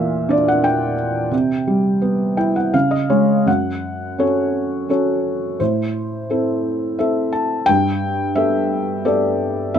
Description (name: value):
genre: classical, lyrical solo piano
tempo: 86 BPM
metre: 3/4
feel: rubato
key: unclear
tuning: A4 = 440 Hz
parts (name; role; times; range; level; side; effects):
- felt-muted upright piano; solo; 0.0-9.8 s; E2 to A5; -16 LUFS; equal; none
room: light reverb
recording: dark, warm production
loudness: -16 LUFS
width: side -8 dB against mid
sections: 0.0-3.5 A section; 3.5-9.8 B section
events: felt piano fill 2.0-3.5, 6.6-7.7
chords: 0.0 Gm6/Bb; 1.3 Cmaj7; 2.7 Db5; 3.5 F#m; 5.6 Am; 7.7 Gadd9